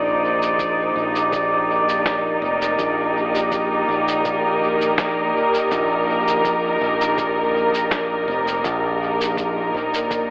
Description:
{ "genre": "ambient dub", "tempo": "82 BPM", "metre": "4/4", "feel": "swing 54% on 16ths", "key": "unclear", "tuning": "A4 = 439 Hz", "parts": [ { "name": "dark studio string section", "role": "sustained chords", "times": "0.0-10.3 s", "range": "Bb2 to C5", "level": "-19 LUFS", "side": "equal", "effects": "none" }, { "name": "modern bright fingered electric bass", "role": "bass", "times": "0.0-10.3 s", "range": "F1 to Bb1", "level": "-27 LUFS", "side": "equal", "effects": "none" }, { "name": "drifting glass-harmonics texture", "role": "texture", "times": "0.0-10.3 s", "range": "D5", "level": "-24 LUFS", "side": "equal", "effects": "chorus, built-in reverb" }, { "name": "electronic shaker and snare drum", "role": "drums", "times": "0.4-10.3 s", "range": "none", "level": "-26 LUFS", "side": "equal", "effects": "dub echo" }, { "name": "electronic kick drum", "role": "drums", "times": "0.6-10.3 s", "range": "none", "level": "-31 LUFS", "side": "equal", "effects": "none" } ], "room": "wet spring reverb, RT60 2.1 s", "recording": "telephone sound", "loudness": "-17 LUFS", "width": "side -34 dB against mid", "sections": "0.0-10.3 A section", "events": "none", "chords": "0.0 Eb", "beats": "0.59 1.33 2.06 | 2.79 3.52 4.25 4.99 | 5.72 6.45 7.18 7.91 | 8.64 9.38 10.11" }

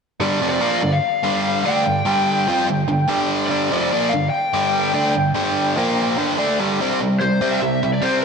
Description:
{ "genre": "rock", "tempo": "146 BPM", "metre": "4/4", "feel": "straight", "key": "G dorian", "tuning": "A4 = 440 Hz", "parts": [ { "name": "lead guitar through a small cranked amp", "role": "melody", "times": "0.2-8.2 s", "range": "C5 to G5", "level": "-21 LUFS", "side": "left 1 dB", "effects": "overdrive" }, { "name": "biting overdriven guitar", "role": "riff", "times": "0.2-8.2 s", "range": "F2 to F4", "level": "-18 LUFS", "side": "right 1 dB", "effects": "none" } ], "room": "wet lush hall reverb, RT60 2.5 s", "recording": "big arena sound", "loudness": "-17 LUFS", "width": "side -5 dB against mid", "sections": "0.2-6.8 A section; 6.8-8.2 B section", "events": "none", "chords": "0.2 Gm; 5.8 Bb5; 6.2 G5; 6.8 C5", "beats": "| 0.20 0.62 1.03 1.44 | 1.85 2.26 2.67 3.09 | 3.50 3.91 4.32 4.73 | 5.14 5.55 5.97 6.38 | 6.79 7.20 7.61 8.02" }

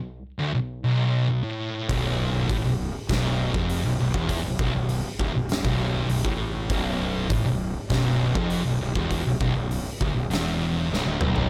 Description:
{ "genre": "stoner and doom metal", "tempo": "100 BPM", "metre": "4/4", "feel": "straight", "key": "B minor", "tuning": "A4 = 440 Hz", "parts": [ { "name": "thick fuzz guitar", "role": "riff", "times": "0.0-11.5 s", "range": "B1 to A2", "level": "-30 LUFS", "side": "equal", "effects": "distortion" }, { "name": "thick fuzz guitar", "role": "riff", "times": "0.0-11.5 s", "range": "B1 to A2", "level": "-30 LUFS", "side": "equal", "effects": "distortion" }, { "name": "fuzz fingered electric bass", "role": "bass", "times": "1.9-11.5 s", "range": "B0 to A1", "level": "-33 LUFS", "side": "equal", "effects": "overdrive" }, { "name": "oversized low-tuned drum kit", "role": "drums", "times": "1.9-11.5 s", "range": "hi-hat, kick drum, snare drum, toms", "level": "-31 LUFS", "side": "equal", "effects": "none" } ], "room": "light reverb", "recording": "none", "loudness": "-25 LUFS", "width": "mono", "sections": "0.0-11.5 A section", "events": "drum fill 10.9-11.5", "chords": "0.0 Bm", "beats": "0.10 0.70 1.30 | 1.90 2.50 3.11 3.71 | 4.31 4.91 5.51 6.11 | 6.71 7.32 7.92 8.52 | 9.12 9.72 10.32 10.92" }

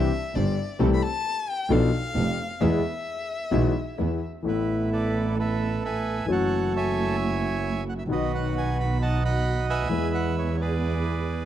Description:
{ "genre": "tango", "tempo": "132 BPM", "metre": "4/4", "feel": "rubato", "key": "A major from 4.4 s", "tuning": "A4 = 439 Hz", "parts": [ { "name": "warm violin", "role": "second line", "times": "0.0-4.2 s", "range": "D5 to B5", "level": "-31 LUFS", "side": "left 4 dB", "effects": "none" }, { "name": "warm concert grand piano", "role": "accompaniment", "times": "0.0-11.5 s", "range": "F1 to A4", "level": "-27 LUFS", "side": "left 3 dB", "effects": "none" }, { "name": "dark studio string section", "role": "stabs", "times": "0.0-11.5 s", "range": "A3 to C5", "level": "-34 LUFS", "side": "right 4 dB", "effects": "none" }, { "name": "clear double bass", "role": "bass", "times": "0.0-11.5 s", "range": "F1 to E2", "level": "-27 LUFS", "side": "right 2 dB", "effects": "none" }, { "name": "bandoneon", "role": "melody", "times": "4.5-11.5 s", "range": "E4 to B5", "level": "-29 LUFS", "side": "right 5 dB", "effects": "none" } ], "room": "studio ambience", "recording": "dry, close 1970s-style studio recording", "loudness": "-23 LUFS", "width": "side -11 dB against mid", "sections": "0.0-4.4 A section; 4.4-11.5 B section", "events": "violin solo 0.0-4.4", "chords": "0.0 Cadd9; 0.8 Am/C; 1.7 Bm7b5; 2.6 E; 4.4 Asus2; 6.3 F#m7; 8.1 B; 9.9 E", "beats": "0.35 | 0.80 1.25 1.70 2.15 | 2.60 3.06 3.51 3.98 | 4.45 4.91 5.37 5.83 | 6.29 6.74 7.19 7.64 | 8.10 8.55 9.01 9.46 | 9.91 10.37 10.83 11.30" }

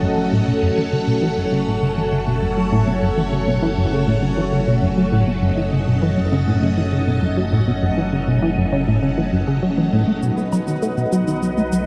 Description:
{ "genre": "ambient, sequencer-driven space music", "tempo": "100 BPM", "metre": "4/4", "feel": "straight", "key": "F# dorian", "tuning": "A4 = 444 Hz", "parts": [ { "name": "string machine, full ensemble", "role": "sustained chords", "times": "0.0-11.9 s", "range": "F#3 to D#5", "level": "-24 LUFS", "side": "equal", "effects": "phaser, ensemble chorus" }, { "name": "plucky analog bass", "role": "riff", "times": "0.0-11.8 s", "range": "F#2 to A3", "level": "-21 LUFS", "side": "equal", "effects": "subtle chorus, delay" }, { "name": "analog drone", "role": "bass", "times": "0.0-11.9 s", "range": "F#1 to B1", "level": "-29 LUFS", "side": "equal", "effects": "chorus" }, { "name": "bubbling stepped-filter texture", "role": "texture", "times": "0.0-11.9 s", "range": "F#5", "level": "-35 LUFS", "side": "equal", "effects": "chorus, built-in reverb" }, { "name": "cabasa and woodblock", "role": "percussion", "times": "10.2-11.8 s", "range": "none", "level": "-40 LUFS", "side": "equal", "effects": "delay" } ], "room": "moderate huge ambient reverb, RT60 8.3 s", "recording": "dark, warm production", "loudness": "-19 LUFS", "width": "mono", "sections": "0.0-11.9 A section", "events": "filter sweep on analog synth bass 0.0-11.9", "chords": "0.0 F#m; 10.2 B", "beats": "0.02 | 0.62 1.22 1.82 2.42 | 3.02 3.62 4.22 4.82 | 5.42 6.02 6.62 7.22 | 7.82 8.42 9.02 9.62 | 10.22 10.82 11.42" }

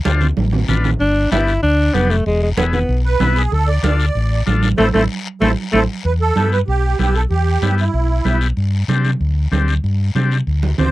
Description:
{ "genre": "latin, cumbia", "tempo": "190 BPM", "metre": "4/4", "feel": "straight", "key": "unclear", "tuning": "A4 = 441 Hz", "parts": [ { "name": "overdriven combo organ", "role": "accompaniment", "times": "0.1-10.9 s", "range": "B3 to C5", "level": "-21 LUFS", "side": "left 4 dB", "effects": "none" }, { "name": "fingered electric bass", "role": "bass", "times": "0.1-10.9 s", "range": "E1 to C3", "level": "-16 LUFS", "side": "equal", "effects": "none" }, { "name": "congas", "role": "percussion", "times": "0.1-10.9 s", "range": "none", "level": "-22 LUFS", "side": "right 5 dB", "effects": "none" }, { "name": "guiro", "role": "percussion", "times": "0.1-10.9 s", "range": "none", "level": "-32 LUFS", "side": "left 7 dB", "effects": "none" }, { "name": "breathy alto saxophone", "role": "melody", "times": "1.0-5.8 s", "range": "G#3 to E4", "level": "-17 LUFS", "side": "left 1 dB", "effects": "none" }, { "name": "musette accordion", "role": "second line", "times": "3.0-8.4, 10.8-10.9 s", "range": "E4 to D5", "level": "-20 LUFS", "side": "right 5 dB", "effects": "none" } ], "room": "little or no reverb", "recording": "dry, close 1970s-style studio recording", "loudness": "-14 LUFS", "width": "side -17 dB against mid", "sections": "0.0-6.0 A section; 6.0-10.9 B section", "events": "drum fill 0.4-1.0, 5.3-6.0, 10.6; band accent 4.8-6.0; accordion solo 6.0-10.9", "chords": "0.0 Dm; 1.0 G; 2.3 E; 3.5 Dm; 4.8 Am; 6.0 Em; 8.6 Gsus4", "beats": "0.05 0.37 0.68 | 1.00 1.31 1.63 1.95 | 2.26 2.58 2.89 3.21 | 3.52 3.84 4.15 4.47 | 4.78 5.10 5.41 5.73 | 6.04 6.36 6.68 6.99 | 7.31 7.62 7.94 8.26 | 8.57 8.89 9.21 9.52 | 9.84 10.15 10.47 10.79" }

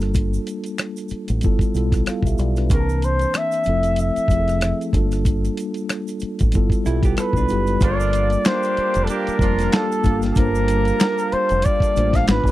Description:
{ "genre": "R&B, neo-soul", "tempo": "94 BPM", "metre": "4/4", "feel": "swing 58% on 16ths", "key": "G dorian", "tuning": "A4 = 440 Hz", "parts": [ { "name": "mellow tine electric piano", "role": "accompaniment", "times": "0.0-12.5 s", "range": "E3 to A5", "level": "-24 LUFS", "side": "left 1 dB", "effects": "fast stereo tremolo" }, { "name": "deep dub fingered electric bass", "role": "bass", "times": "0.0-12.5 s", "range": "F1 to C2", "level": "-22 LUFS", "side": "equal", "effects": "none" }, { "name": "dusty soul sampler-style drum kit", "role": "drums", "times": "0.0-12.5 s", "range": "hi-hat, kick drum, rim click, snare drum", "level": "-20 LUFS", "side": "equal", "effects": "none" }, { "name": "tube shaker and finger snaps", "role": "percussion", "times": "0.0-12.5 s", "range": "none", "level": "-37 LUFS", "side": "left 1 dB", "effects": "none" }, { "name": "warm flugelhorn", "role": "melody", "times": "2.7-12.5 s", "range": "A4 to F5", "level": "-21 LUFS", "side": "equal", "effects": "none" }, { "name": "hollow-body jazz guitar", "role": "second line", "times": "6.9-7.8 s", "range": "G3 to B4", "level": "-29 LUFS", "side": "right 6 dB", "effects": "none" }, { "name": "warm analog pad", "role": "sustained chords", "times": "7.8-12.5 s", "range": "Bb3 to B5", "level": "-32 LUFS", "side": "left 3 dB", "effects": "chorus" }, { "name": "clear horn section", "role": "stabs", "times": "7.8-9.9 s", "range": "F3 to G4", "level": "-27 LUFS", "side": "right 4 dB", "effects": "none" } ], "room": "little or no reverb", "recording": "dry, close 1970s-style studio recording", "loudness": "-17 LUFS", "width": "side -15 dB against mid", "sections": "0.0-7.8 A section; 7.8-12.5 B section", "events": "none", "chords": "0.0 Gm9; 1.4 G13; 2.7 C13; 3.7 Fmaj7; 4.9 Gm9; 6.5 G13; 7.8 Gm9", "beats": "| 0.15 0.79 1.42 2.06 | 2.70 3.34 3.98 4.62 | 5.25 5.89 6.53 7.17 | 7.81 8.44 9.08 9.72 | 10.36 11.00 11.64 12.27" }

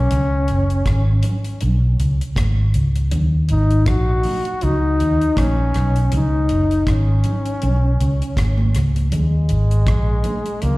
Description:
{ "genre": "roots reggae", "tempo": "80 BPM", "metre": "4/4", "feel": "swing 58% on 16ths", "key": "unclear", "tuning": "A4 = 440 Hz", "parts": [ { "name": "clear trombone", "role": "melody", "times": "0.0-10.8 s", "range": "Ab3 to Gb4", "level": "-22 LUFS", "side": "left 1 dB", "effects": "tape echo, slapback echo" }, { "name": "vintage muted fingered electric bass", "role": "bass", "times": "0.0-10.8 s", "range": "Gb1 to Eb2", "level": "-16 LUFS", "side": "equal", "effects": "none" }, { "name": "deep reggae drum kit", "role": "drums", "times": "0.1-10.8 s", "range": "hi-hat, kick drum, rim click", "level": "-25 LUFS", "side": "equal", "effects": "none" }, { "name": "congas", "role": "percussion", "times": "0.1-10.8 s", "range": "none", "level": "-30 LUFS", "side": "right 3 dB", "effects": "none" } ], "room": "light reverb", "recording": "live gig heard through the venue's PA, recital hall reverb", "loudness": "-15 LUFS", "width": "side -20 dB against mid", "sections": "0.0-10.8 A section", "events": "none", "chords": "0.1 Db5; 3.1 Ebm; 6.1 Db5; 9.1 Eb5", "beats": "| 0.11 0.86 1.61 2.36 | 3.11 3.87 4.62 5.37 | 6.12 6.87 7.62 8.37 | 9.12 9.87 10.62" }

